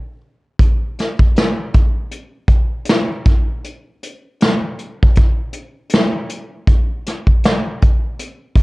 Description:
hip hop; 79 BPM; 4/4; swing 62% on 16ths
vintage brush drum kit; drums; 0.6-8.6 s; hi-hat, kick drum, snare drum; -14 LUFS; equal
moderate small room reverb, RT60 0.6 s; worn, warbling old tape, cassette tape, warbly pitch drift; -14 LUFS; side -23 dB against mid
0.6-8.6 A section
break 0.0-0.6

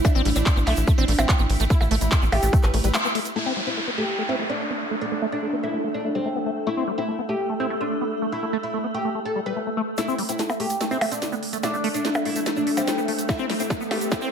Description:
psychedelic trance; 145 BPM; 4/4; straight; A4 = 440 Hz
oud; melody; 0.0-14.3 s; C4 to B4; -28 LUFS; left 1 dB; phaser, vintage 12-bit sampler grit, sidechain pumping, tape echo
swarming drone; sustained chords; 0.0-14.3 s; A3 to A4; -30 LUFS; right 1 dB; built-in reverb, sidechain pumping
liquid acid bass; riff; 0.0-14.3 s; G3 to C4; -28 LUFS; moving between left 8 dB and right 6 dB; chorus, auto-pan, sidechain pumping, tape echo
electronic kick drum; drums; 0.0-2.6, 13.3-14.2 s; -20 LUFS; equal
techno drum kit; drums; 0.0-3.3, 10.0-14.2 s; handclaps, hi-hat, percussion blips, ride cymbal, snare drum; -27 LUFS; right 1 dB
egg shaker; percussion; 0.0-3.3, 10.0-14.3 s; -38 LUFS; right 3 dB
tight sequencer bass; bass; 0.2-2.9 s; A1 to B1; -22 LUFS; equal; tube saturation
downlifter and riser; sound effects; 3.4-6.7, 11.3-14.3 s; -32 LUFS; equal
moderate digital room reverb, RT60 1.0 s, digital ambience; high-pass filter; -21 LUFS; side -7 dB against mid
0.0-3.4 A section; 3.4-10.0 B section; 10.0-14.3 C section
drop 0.0-3.4; break 2.9-3.4; band accent 2.9; filter sweep on acid bass 3.4-10.0, 10.0-14.3; build-up 10.0-14.3; drum fill 10.0-14.3; riser 11.3-14.3
0.0 A5; 3.4 Gsus2 (rootless)

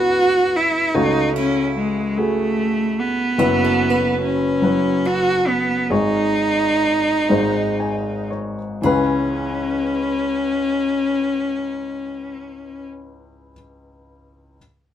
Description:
acoustic folk-pop ballad; 37-49 BPM (dotted quarters); 6/8; straight; C# minor; A4 = 439 Hz
clear cello; melody; 0.0-12.8 s; G#3 to F#4; -19 LUFS; equal
dark baby grand piano; accompaniment; 0.0-14.6 s; F#1 to G#5; -22 LUFS; left 1 dB
picked steel-string acoustic guitar; arpeggios; 0.0-13.5 s; E4 to B4; -29 LUFS; right 3 dB
light reverb; band playing live in one room; -17 LUFS; side -10 dB against mid
0.0-8.8 A section; 8.8-12.1 B section
slowing down 3.4-8.8
0.0 C#m7; 1.0 A6/C#; 3.4 F#7sus4; 5.9 G#sus4; 7.3 G#; 8.8 C#m7

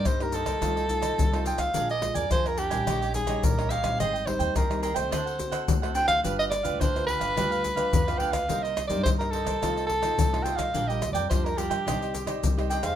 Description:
samba and choro; 107 BPM; 4/4; straight; C minor; A4 = 441 Hz
clear soprano saxophone; melody; 0.0-13.0 s; G4 to G5; -28 LUFS; right 1 dB
cavaquinho; accompaniment; 0.0-13.0 s; D4 to Ab5; -34 LUFS; right 8 dB
nylon-string guitar; accompaniment; 0.0-13.0 s; Ab2 to D5; -34 LUFS; left 2 dB
upright bass; bass; 0.0-13.0 s; G1 to G2; -33 LUFS; right 1 dB
maracas, surdo, pandeiro and tamborim; percussion; 0.1-13.0 s; -28 LUFS; left 2 dB
moderate studio ambience, RT60 0.5 s; minimal, uncompressed stereo recording; -24 LUFS; side -10 dB against mid
0.0-13.0 A section
0.0 Cm7; 0.6 F7/C; 1.7 Bb7; 2.9 Eb7/Bb; 4.0 Abmaj7; 5.1 D7; 6.2 G7; 8.5 Cm7; 9.6 F7/C; 10.7 Bb6; 11.9 Cmadd9

